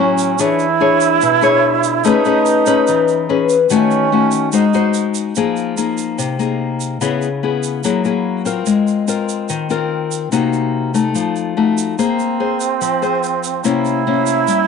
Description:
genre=bossa nova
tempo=145 BPM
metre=4/4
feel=straight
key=F minor from 5.4 s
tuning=A4 = 440 Hz
part: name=bright reedy wooden-headed alto flute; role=second line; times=0.0-5.1, 12.0-14.7 s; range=C4 to E4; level=-16 LUFS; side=right 8 dB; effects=none
part: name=nylon-string guitar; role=accompaniment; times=0.0-14.7 s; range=A2 to C#5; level=-15 LUFS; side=left 6 dB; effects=none
part: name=egg shaker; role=percussion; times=0.2-14.7 s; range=none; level=-27 LUFS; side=right 13 dB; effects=none
room=wet spring reverb, RT60 1.3 s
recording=1960s-style stereo with parts hard left and right, nothing above 10.7 kHz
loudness=-14 LUFS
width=side -6 dB against mid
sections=0.0-5.4 A section; 5.4-14.7 B section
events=none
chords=0.4 E6; 2.0 Amaj9; 3.7 D#m7b5; 4.5 G#7; 5.4 Fm7; 7.0 Dbm7; 7.8 Gb9; 8.7 Ab69; 10.3 Cm7b5; 11.2 F7b9; 12.0 Bbsus2; 13.6 C7b9

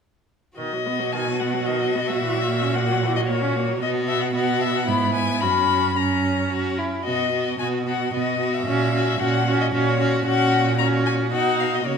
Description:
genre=quick classical-period movement for string quartet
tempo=112 BPM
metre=3/4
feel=rubato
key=B major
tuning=A4 = 444 Hz
part: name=rich violin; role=melody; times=0.6-12.0 s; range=C#5 to B5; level=-24 LUFS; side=left 8 dB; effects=none
part: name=rich violin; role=second line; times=0.6-12.0 s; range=C#4 to F#4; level=-26 LUFS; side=left 3 dB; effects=none
part: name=clear viola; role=accompaniment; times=0.6-12.0 s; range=D#3 to D#4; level=-26 LUFS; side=right 3 dB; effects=none
part: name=rich cello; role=bass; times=0.6-12.0 s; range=F#2 to C#3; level=-25 LUFS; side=right 5 dB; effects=none
room=moderate recital hall reverb, RT60 1.6 s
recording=minimal, uncompressed stereo recording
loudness=-19 LUFS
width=side -6 dB against mid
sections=0.6-12.0 A section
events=none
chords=0.6 B; 2.2 F#7/A#; 3.8 B5; 4.9 E/G#; 5.4 F#; 7.1 B; 8.7 F#/A#; 11.3 B

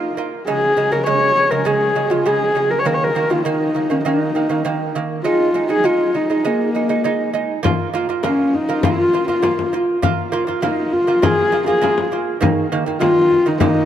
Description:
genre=mongolian traditional, Mongolian folk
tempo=100 BPM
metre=4/4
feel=straight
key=Bb yu mode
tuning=A4 = 440 Hz
part: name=dark horsehead fiddle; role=melody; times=0.0-13.9 s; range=Bb3 to Db5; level=-17 LUFS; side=left 2 dB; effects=none
part: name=lute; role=arpeggios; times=0.0-13.9 s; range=Db3 to F4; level=-20 LUFS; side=right 5 dB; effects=none
part: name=frame drum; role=percussion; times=7.7-13.7 s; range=none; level=-22 LUFS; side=left 5 dB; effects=none
room=moderate huge ambient reverb, RT60 4.1 s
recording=dark, warm production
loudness=-15 LUFS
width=side -10 dB against mid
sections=0.0-7.6 A section; 7.6-13.9 B section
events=none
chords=0.5 Db5; 2.9 Eb5; 5.3 Ab5; 7.6 Bb5; 12.4 Eb5

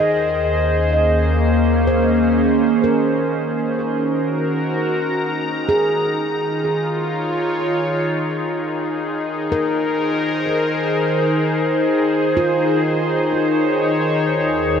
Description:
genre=ambient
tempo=63 BPM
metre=3/4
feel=straight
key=unclear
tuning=A4 = 440 Hz
part: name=evolving wavetable pad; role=sustained chords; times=0.0-14.8 s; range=Eb3 to Bb5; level=-17 LUFS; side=equal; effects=chorus, built-in reverb
part: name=handpan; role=arpeggios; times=0.0-14.5 s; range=F4 to Eb5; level=-24 LUFS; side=equal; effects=diffuse ambient delay
part: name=round analog bass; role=bass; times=0.0-2.8, 14.3-14.8 s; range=Eb2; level=-21 LUFS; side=equal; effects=none
room=wet huge ambient reverb, RT60 8.1 s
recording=none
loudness=-16 LUFS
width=side -7 dB against mid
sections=0.0-2.8 A section; 2.8-14.3 B section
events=filter sweep on ambient pad 0.0-2.8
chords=0.0 Bbm7/Eb; 2.8 Ebm; 5.7 Db/Eb; 8.5 Abadd9/Eb; 11.4 Bbm7/Eb; 14.3 N.C.

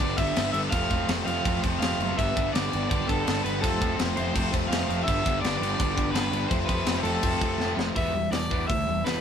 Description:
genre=punk rock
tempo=165 BPM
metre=4/4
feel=straight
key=unclear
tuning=A4 = 441 Hz
part: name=crunchy overdriven guitar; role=melody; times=0.0-9.2 s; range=G4 to F5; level=-30 LUFS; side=equal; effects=none
part: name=distorted electric guitar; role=riff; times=0.0-9.2 s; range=F2 to D4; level=-29 LUFS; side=equal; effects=distortion
part: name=fuzz picked electric bass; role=bass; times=0.0-9.2 s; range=E1 to D2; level=-31 LUFS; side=equal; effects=overdrive
part: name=tight metal drum kit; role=drums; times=0.0-9.1 s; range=crash cymbal, hi-hat, kick drum, snare drum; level=-28 LUFS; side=equal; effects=none
room=light reverb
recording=band playing live in one room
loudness=-23 LUFS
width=side -8 dB against mid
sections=0.0-8.0 A section; 8.0-9.2 B section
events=drum fill 7.6-8.0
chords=0.0 G; 0.7 F; 2.2 G; 3.6 F; 5.1 G; 6.5 F; 8.0 Em

